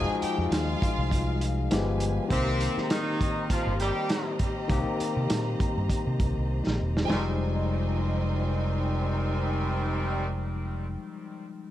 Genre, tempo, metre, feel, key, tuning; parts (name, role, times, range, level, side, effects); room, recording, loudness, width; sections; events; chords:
lush 1970s-style soul; 100 BPM; 4/4; swing 54% on 16ths; F minor; A4 = 437 Hz
bright studio violin section; second line; 0.0-1.4, 7.1-10.2 s; Eb4 to Ab5; -36 LUFS; right 1 dB
overdriven tine electric piano; accompaniment; 0.0-11.7 s; Eb3 to Ab4; -32 LUFS; left 5 dB
warm studio string section; sustained chords; 0.0-10.2 s; F3 to Bb5; -38 LUFS; right 1 dB
fingered electric bass; bass; 0.0-11.0 s; E1 to C3; -28 LUFS; equal
vintage drum kit; drums; 0.2-7.2 s; hi-hat, kick drum, snare drum, toms; -29 LUFS; right 1 dB
clear horn section; stabs; 2.3-10.3 s; C3 to G4; -33 LUFS; right 1 dB; tape echo
light reverb, studio ambience; dark, warm production; -25 LUFS; side -13 dB against mid
0.0-7.1 A section; 7.1-9.5 B section
drum fill 6.5-7.1
0.0 Fm9; 1.7 G7b9; 2.3 Cm7; 7.1 Fm9